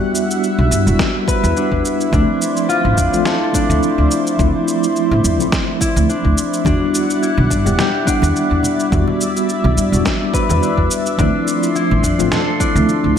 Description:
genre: sunset chillout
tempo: 106 BPM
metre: 4/4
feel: swing 55% on 16ths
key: E phrygian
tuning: A4 = 440 Hz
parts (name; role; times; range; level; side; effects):
- mellow tine electric piano; accompaniment; 0.0-13.2 s; F3 to F#5; -19 LUFS; moving between left 4 dB and right 5 dB; medium stereo tremolo, auto-pan, ping-pong delay
- lush unison pad; sustained chords; 0.0-13.2 s; F3 to C6; -22 LUFS; right 1 dB; chorus
- concert harp; arpeggios; 0.0-13.2 s; D4 to B4; -21 LUFS; left 4 dB; vintage 12-bit sampler grit, ping-pong delay, slapback echo
- electronic shaker and snare drum; drums; 0.2-13.0 s; none; -23 LUFS; equal; none
- upright bass; bass; 0.6-13.1 s; E1 to G2; -17 LUFS; equal; none
- electronic kick drum; drums; 1.0-12.7 s; none; -20 LUFS; equal; overdrive
- congas; percussion; 6.6-13.2 s; none; -25 LUFS; right 3 dB; none
room: wet recital hall reverb, RT60 1.3 s, studio reverb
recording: big arena sound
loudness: -13 LUFS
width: side -8 dB against mid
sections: 0.0-13.2 A section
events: none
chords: 0.0 Em9; 2.1 Dm9; 6.7 Em9; 11.2 Dm9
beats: 0.43 1.00 1.56 | 2.13 2.69 3.26 3.83 | 4.39 4.96 5.53 6.09 | 6.66 7.22 7.79 8.36 | 8.92 9.49 10.05 10.62 | 11.19 11.75 12.32 12.88

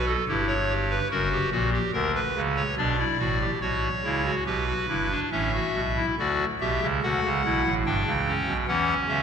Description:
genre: classical, baroque-style 3-part fugue for pipe organ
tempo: 71 BPM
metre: 3/4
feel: straight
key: unclear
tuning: A4 = 440 Hz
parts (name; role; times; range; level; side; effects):
- pipe organ, clarinet reed; solo; 0.0-9.2 s; F#1 to G5; -23 LUFS; equal; none
room: wet church reverb, RT60 3.8 s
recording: minimal, uncompressed stereo recording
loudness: -23 LUFS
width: side -7 dB against mid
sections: 0.0-3.6 A section; 3.6-9.2 B section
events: none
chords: 0.3 Em/G; 1.1 F#; 2.8 Bm; 3.6 Em/B; 5.3 A; 6.2 D; 7.9 G; 8.7 C#m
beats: 0.28 | 1.11 1.94 2.78 | 3.63 4.47 5.33 | 6.18 7.03 7.86 | 8.68

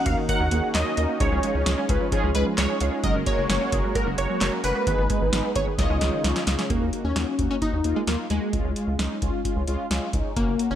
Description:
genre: synth-pop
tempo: 131 BPM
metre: 4/4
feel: straight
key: unclear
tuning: A4 = 440 Hz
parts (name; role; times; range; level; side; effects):
- funky polysynth comp; melody; 0.0-10.8 s; Ab3 to Gb5; -27 LUFS; equal; chorus, digital delay
- sweeping resonant pad; sustained chords; 0.0-6.7 s; Db3 to Ab4; -31 LUFS; left 1 dB; chorus
- analog pluck; arpeggios; 0.0-6.7 s; Eb3 to Gb5; -31 LUFS; right 5 dB; chorus, digital delay
- mellow synth brass; accompaniment; 0.1-10.8 s; Ab3 to Db5; -30 LUFS; equal; chorus, phaser
- rubbery square bass; bass; 0.1-10.8 s; Gb1 to Eb2; -26 LUFS; equal; none
- electro analog drum machine; drums; 0.1-10.7 s; handclaps, hi-hat, kick drum, snare drum; -27 LUFS; equal; none
room: light reverb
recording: none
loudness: -21 LUFS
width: side -10 dB against mid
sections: 0.0-6.7 A section; 6.7-10.8 B section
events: drum fill 5.8-6.7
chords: 0.0 Ebm7; 1.2 Db; 3.0 Gbadd9; 4.9 Abm; 5.8 Dbadd9; 6.7 Ebm7; 8.5 Db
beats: 0.29 0.75 | 1.21 1.66 2.12 2.58 | 3.04 3.50 3.95 4.41 | 4.87 5.33 5.79 6.24 | 6.70 7.16 7.62 8.07 | 8.53 8.99 9.45 9.91 | 10.37

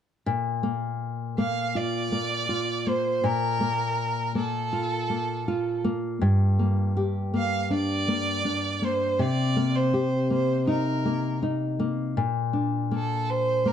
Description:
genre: pop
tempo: 81 BPM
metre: 4/4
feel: straight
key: Bb major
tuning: A4 = 439 Hz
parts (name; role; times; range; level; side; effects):
- nylon-string guitar; accompaniment; 0.3-13.7 s; G2 to G4; -25 LUFS; left 1 dB; none
- rich violin; melody; 1.4-13.7 s; A4 to F5; -27 LUFS; right 3 dB; plate reverb
room: moderate studio reverb, RT60 0.6 s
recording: dark, warm production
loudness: -24 LUFS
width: side -9 dB against mid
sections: 0.3-12.2 A section; 12.2-13.7 B section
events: none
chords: 0.3 Bbmaj7(no3); 6.2 Gm; 9.2 Cm7; 12.2 Bbmaj7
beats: | 0.26 1.01 1.75 2.50 | 3.24 3.98 4.73 5.47 | 6.22 6.96 7.70 8.45 | 9.19 9.94 10.68 11.42 | 12.16 12.91 13.65

